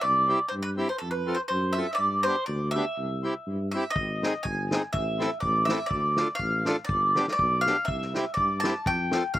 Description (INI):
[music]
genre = alpine folk, alpine dance band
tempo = 122 BPM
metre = 2/4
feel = swing 54% on 8ths, rubato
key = C major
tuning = A4 = 440 Hz
[part]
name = bowl-back mandolin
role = melody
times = 0.0-9.4 s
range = A4 to A5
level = -26 LUFS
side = equal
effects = slapback echo
[part]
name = mellow tuba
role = bass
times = 0.0-9.4 s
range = G1 to G2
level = -31 LUFS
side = equal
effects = none
[part]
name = accordion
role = accompaniment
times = 0.3-9.2 s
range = B3 to A4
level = -30 LUFS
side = equal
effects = slapback echo
[part]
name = unplugged drum kit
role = drums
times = 4.0-9.4 s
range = kick drum, snare drum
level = -31 LUFS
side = equal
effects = none
[sound]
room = little or no reverb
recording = recorded outdoors, with no room sound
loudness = -24 LUFS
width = side -14 dB against mid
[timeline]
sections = 0.0-9.4 A section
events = none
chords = 0.0 C; 1.0 F; 2.0 G; 3.0 C; 4.0 Ab; 4.9 Am; 5.9 Dm; 6.9 G; 7.9 C; 8.9 F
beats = | 0.02 0.52 | 1.01 1.50 | 1.99 2.48 | 2.97 3.46 | 3.96 4.46 | 4.95 5.43 | 5.92 6.40 | 6.89 7.39 | 7.88 8.37 | 8.87 9.35